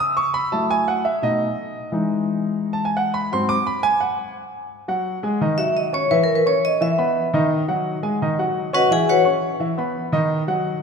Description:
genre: jazz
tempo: 172 BPM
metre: 4/4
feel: straight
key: G# minor from 4.7 s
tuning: A4 = 440 Hz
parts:
  - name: warm baby grand piano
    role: accompaniment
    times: 0.0-10.8 s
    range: G#2 to D#6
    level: -20 LUFS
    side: equal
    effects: none
  - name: vibraphone with medium hard mallets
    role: melody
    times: 5.6-9.3 s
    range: F#4 to G#5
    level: -19 LUFS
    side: left 1 dB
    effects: none
room: wet concert hall reverb, RT60 2.4 s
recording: minimal, uncompressed stereo recording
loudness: -18 LUFS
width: side -5 dB against mid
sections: 0.0-4.7 A section; 4.7-10.8 A section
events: grand piano solo 0.0-4.7; vibraphone solo 4.7-10.8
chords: 0.0 C#7(no3); 0.5 F#m7; 1.2 B7; 1.9 Emaj7; 3.3 G#7#9; 4.7 G#5; 6.1 C#m9; 7.5 G#7(no3); 8.9 F#7sus4; 10.3 G#7(no3) (rootless)

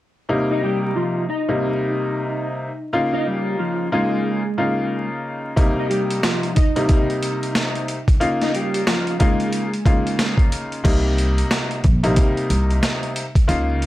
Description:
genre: hip hop, boom-bap hip-hop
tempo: 91 BPM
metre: 4/4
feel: swing 61% on 16ths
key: C phrygian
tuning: A4 = 439 Hz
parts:
  - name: warm upright piano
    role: accompaniment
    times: 0.3-13.9 s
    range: C3 to F4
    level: -22 LUFS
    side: left 1 dB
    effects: cassette tape
  - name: mellow electric guitar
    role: melody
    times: 0.5-10.4 s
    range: F3 to Eb5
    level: -24 LUFS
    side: equal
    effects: ensemble chorus
  - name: boom bap sampler-style drum kit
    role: drums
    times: 5.6-13.9 s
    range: crash cymbal, hi-hat, kick drum, snare drum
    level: -19 LUFS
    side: equal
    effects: vintage 12-bit sampler grit
  - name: upright bass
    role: bass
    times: 10.8-13.9 s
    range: Bb1 to Db2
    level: -19 LUFS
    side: equal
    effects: none
room: little or no reverb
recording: vinyl crackle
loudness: -18 LUFS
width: side -15 dB against mid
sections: 0.3-10.8 A section; 10.8-13.9 B section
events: none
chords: 0.3 Cm7; 2.9 Db69; 5.6 Cm7; 8.2 Db69; 10.8 Cm7

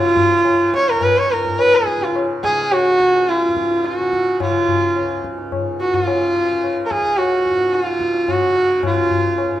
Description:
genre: indian classical, Hindustani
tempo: 107 BPM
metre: 4/4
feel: straight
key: Db raga khamaj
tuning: A4 = 438 Hz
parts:
  - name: rich sarangi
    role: melody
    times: 0.0-9.6 s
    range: F4-22c to Db5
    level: -15 LUFS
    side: equal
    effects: none
  - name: tanpura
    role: drone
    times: 0.0-9.6 s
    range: Db2 to Db3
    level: -26 LUFS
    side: right 2 dB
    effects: none
  - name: tabla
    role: percussion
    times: 0.2-9.6 s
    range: none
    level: -25 LUFS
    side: left 5 dB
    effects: none
room: moderate recital hall reverb, RT60 1.6 s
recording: minimal, uncompressed stereo recording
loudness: -15 LUFS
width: side -12 dB against mid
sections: 0.0-9.6 A section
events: speeding up 0.0-9.6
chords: none

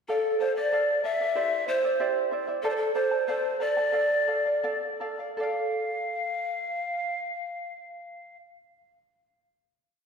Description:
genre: andean folk, Andean ensemble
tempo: 76-95 BPM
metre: 2/4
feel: straight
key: D minor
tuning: A4 = 440 Hz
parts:
  - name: breathy large pan pipes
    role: melody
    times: 0.1-8.4 s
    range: A4 to F5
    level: -26 LUFS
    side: equal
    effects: none
  - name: charango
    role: accompaniment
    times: 0.1-8.9 s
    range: E4 to A5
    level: -30 LUFS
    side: right 2 dB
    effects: none
room: wet scoring stage reverb, RT60 2.0 s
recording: recorded in a church or concert hall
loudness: -25 LUFS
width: side -6 dB against mid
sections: 0.1-5.4 A section; 5.4-8.5 final chord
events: slowing down 2.6-5.4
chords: 0.1 Dm; 1.4 C; 2.6 F; 3.9 Dm

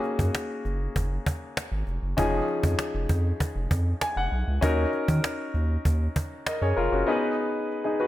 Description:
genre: 1980s-style pop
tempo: 98 BPM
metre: 4/4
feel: straight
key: F# major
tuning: A4 = 440 Hz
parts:
  - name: clear baby grand piano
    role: accompaniment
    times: 0.0-8.1 s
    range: E#3 to G#5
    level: -27 LUFS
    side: left 2 dB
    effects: none
  - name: cajon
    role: drums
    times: 0.0-6.6 s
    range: none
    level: -29 LUFS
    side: equal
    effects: none
  - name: round analog bass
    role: bass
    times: 0.2-7.0 s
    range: E#1 to D#3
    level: -26 LUFS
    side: equal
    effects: none
room: moderate plate reverb, RT60 1.9 s, small room reverb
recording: bright 1980s-style digital production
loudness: -24 LUFS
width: side -14 dB against mid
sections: 0.0-8.1 A section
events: grand piano fill 3.7-4.6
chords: 0.0 F#add9; 2.2 C#add9/E#; 4.6 D#m7; 7.1 G#m

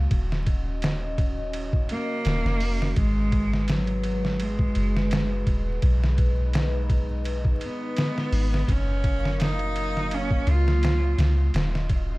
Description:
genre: trip hop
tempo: 84 BPM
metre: 4/4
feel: swing 54% on 16ths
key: G# dorian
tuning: A4 = 440 Hz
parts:
  - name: dark analog pad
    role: sustained chords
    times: 0.0-12.2 s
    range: F#3 to E#5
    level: -34 LUFS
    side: equal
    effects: chorus, phaser
  - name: soft 808-style bass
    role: bass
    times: 0.0-12.2 s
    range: D#1 to C#2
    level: -25 LUFS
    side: equal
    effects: none
  - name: trip hop sampler-style drum kit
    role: drums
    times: 0.1-12.1 s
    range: hi-hat, kick drum, ride cymbal, snare drum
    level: -26 LUFS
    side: equal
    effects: none
  - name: clear cello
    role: melody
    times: 1.9-11.2 s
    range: F#3 to E#4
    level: -29 LUFS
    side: right 1 dB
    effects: dub echo
room: little or no reverb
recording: dark, warm production, vinyl crackle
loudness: -22 LUFS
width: side -21 dB against mid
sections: 0.0-12.2 A section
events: none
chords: 0.1 D#m7; 3.0 G#m7; 5.8 B6; 8.7 F#maj7; 11.5 D#m7

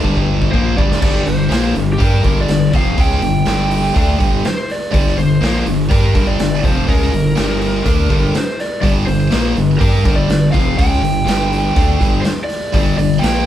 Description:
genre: hard rock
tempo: 123 BPM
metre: 4/4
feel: straight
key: G minor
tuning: A4 = 441 Hz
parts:
  - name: heavy high-gain guitar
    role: riff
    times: 0.0-13.5 s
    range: F2 to G4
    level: -19 LUFS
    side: right 3 dB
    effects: distortion
  - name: sludgy distorted guitar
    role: riff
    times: 0.0-13.5 s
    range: F2 to G4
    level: -19 LUFS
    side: left 6 dB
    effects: overdrive
  - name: gritty driven synth bass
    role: bass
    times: 0.0-13.5 s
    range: F1 to G2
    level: -19 LUFS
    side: equal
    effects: none
  - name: raw garage drum kit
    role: drums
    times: 0.0-13.3 s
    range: crash cymbal, hi-hat, kick drum, snare drum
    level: -18 LUFS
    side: equal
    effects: none
  - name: lead guitar through a small cranked amp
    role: melody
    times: 0.5-13.5 s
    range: G4 to G5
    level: -22 LUFS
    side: right 2 dB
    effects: overdrive
room: moderate studio ambience, RT60 0.5 s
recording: band playing live in one room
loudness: -12 LUFS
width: side -11 dB against mid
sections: 0.0-1.0 A section; 1.0-13.5 B section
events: drum fill 0.0-1.0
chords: 0.0 Gm

